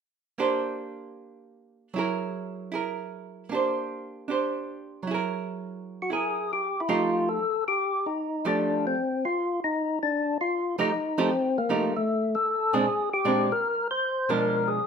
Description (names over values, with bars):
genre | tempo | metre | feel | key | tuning
jazz | 154 BPM | 4/4 | swing 67% on 8ths | unclear | A4 = 440 Hz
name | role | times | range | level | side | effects
archtop guitar, miked and amplified | accompaniment | 0.4-14.8 s | Bb2 to C5 | -28 LUFS | right 4 dB | none
percussive tonewheel organ | melody | 6.0-14.9 s | A3 to C5 | -25 LUFS | left 2 dB | overdrive, slow rotary speaker
room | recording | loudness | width
moderate large studio reverb, RT60 1.0 s | minimal, uncompressed stereo recording | -25 LUFS | side -6 dB against mid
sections
0.4-6.6 A section; 6.6-14.9 B section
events
none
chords
0.4 Bb69; 1.9 Gb9; 3.5 Bb69; 5.1 Gb9; 6.6 F9; 12.9 Bb9